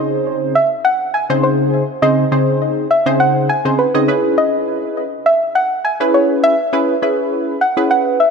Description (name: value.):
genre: pop.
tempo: 102 BPM.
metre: 4/4.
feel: straight.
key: C# minor.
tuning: A4 = 444 Hz.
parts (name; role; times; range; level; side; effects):
soft round pluck; melody; 0.0-8.3 s; B4 to G#5; -16 LUFS; equal; chorus, ping-pong delay.
funky polysynth comp; accompaniment; 0.0-8.2 s; C#3 to D#5; -16 LUFS; equal; chorus.
room: moderate lush hall reverb, RT60 3.0 s.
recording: none.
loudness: -13 LUFS.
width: side -5 dB against mid.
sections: 0.0-8.3 A section.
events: none.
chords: 0.0 G#/C#; 4.1 C#m7.